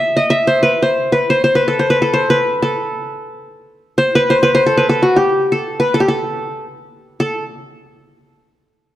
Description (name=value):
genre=Turkish makam ensemble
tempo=free time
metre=none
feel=none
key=A makam nikriz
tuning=A4 = 439 Hz
part: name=qanun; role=solo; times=0.0-7.4 s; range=F#4 to E5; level=-13 LUFS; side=equal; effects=none
room=moderate concert hall reverb, RT60 1.9 s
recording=close, detailed microphones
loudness=-13 LUFS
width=side -13 dB against mid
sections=0.0-7.2 A section; 7.2-9.0 B section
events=none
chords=none